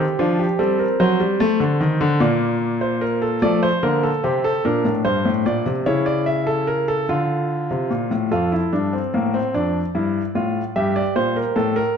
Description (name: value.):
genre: classical, baroque-style 3-part fugue for grand piano.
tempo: 49 BPM (dotted quarters).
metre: 6/8.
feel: straight.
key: unclear.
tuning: A4 = 440 Hz.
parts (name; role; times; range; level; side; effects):
clear grand piano; solo; 0.0-12.0 s; F2 to E5; -18 LUFS; equal; none.
room: wet recital hall reverb, RT60 1.5 s.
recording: dark, warm production.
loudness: -18 LUFS.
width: side -7 dB against mid.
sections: 0.0-8.3 A section; 8.3-12.0 B section.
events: none.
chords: 0.0 C5; 1.0 D7/F#; 2.2 Bbmaj9; 3.4 Dm; 4.6 Gm; 5.9 A/C#; 7.1 Dm; 8.3 F; 9.5 Dm/F; 10.8 Gm.